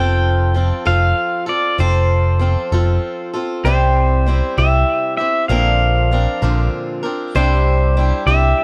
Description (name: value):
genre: folk rock and heartland rock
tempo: 65 BPM (dotted quarters)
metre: 6/8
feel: straight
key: F major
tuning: A4 = 440 Hz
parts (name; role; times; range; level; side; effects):
- pedal steel guitar; melody; 0.0-8.6 s; C5 to G5; -22 LUFS; equal; tape echo
- picked swing-style acoustic guitar; accompaniment; 0.0-8.6 s; Bb2 to Bb4; -23 LUFS; equal; none
- picked electric bass; bass; 0.0-8.5 s; F1 to C2; -18 LUFS; equal; none
room: little or no reverb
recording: dry, close 1970s-style studio recording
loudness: -16 LUFS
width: mono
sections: 0.0-8.6 A section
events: none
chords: 0.0 F; 3.6 C; 5.5 Bbadd9; 7.3 Cadd9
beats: 0.87 | 1.79 2.72 | 3.64 4.57 | 5.49 6.42 | 7.34 8.27